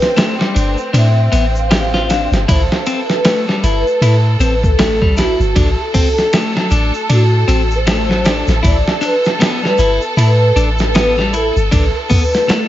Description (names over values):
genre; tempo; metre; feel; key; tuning
trip hop; 78 BPM; 4/4; swing 59% on 16ths; unclear; A4 = 440 Hz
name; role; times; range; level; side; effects
pure breathy sine lead; melody; 0.0-12.6 s; F#4 to F5; -18 LUFS; equal; ensemble chorus, tape echo
rich studio violin section; sustained chords; 0.0-12.7 s; C4 to A4; -22 LUFS; right 1 dB; none
dusty soul sampler-style drum kit; drums; 0.0-12.7 s; hi-hat, kick drum, ride cymbal, snare drum; -16 LUFS; equal; none
egg shaker; percussion; 0.0-12.7 s; none; -35 LUFS; left 3 dB; none
clean electric guitar; arpeggios; 0.2-12.7 s; F#3 to G4; -20 LUFS; left 3 dB; digital delay
soft 808-style bass; bass; 0.6-11.9 s; G1 to A2; -14 LUFS; equal; tube saturation
room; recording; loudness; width
light reverb; vinyl crackle, nothing above 7.6 kHz; -11 LUFS; side -13 dB against mid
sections
0.0-12.7 A section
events
none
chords
0.0 G9; 2.5 Am7; 5.6 D7/A; 8.6 Gadd9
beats
0.17 0.94 1.71 | 2.48 3.25 4.02 4.79 | 5.56 6.33 7.10 7.87 | 8.64 9.41 10.18 10.95 | 11.71 12.48